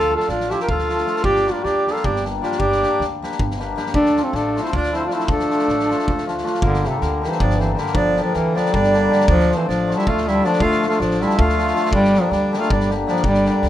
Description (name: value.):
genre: balkan folk, Balkan wedding band.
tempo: 315 BPM (eighths).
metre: 7/8.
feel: straight.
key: unclear.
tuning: A4 = 440 Hz.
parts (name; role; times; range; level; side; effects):
mellow duduk; melody; 0.0-13.7 s; C3 to Bb4; -19 LUFS; equal; none.
accordion; second line; 0.0-13.7 s; A3 to G4; -24 LUFS; right 2 dB; none.
cimbalom; accompaniment; 0.0-13.7 s; D3 to G4; -23 LUFS; left 3 dB; none.
upright bass; bass; 0.0-13.7 s; G1 to D2; -25 LUFS; right 1 dB; none.
loose indie drum kit; percussion; 0.2-13.7 s; kick drum, snare drum; -27 LUFS; equal; none.
room: light reverb.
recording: minimal, uncompressed stereo recording.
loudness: -16 LUFS.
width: side -12 dB against mid.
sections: 0.0-6.6 A section; 6.6-13.7 A section.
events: none.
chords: 0.0 Dm; 1.2 Gm; 3.9 Dm; 6.6 Gm; 9.3 Dm; 11.9 Gm.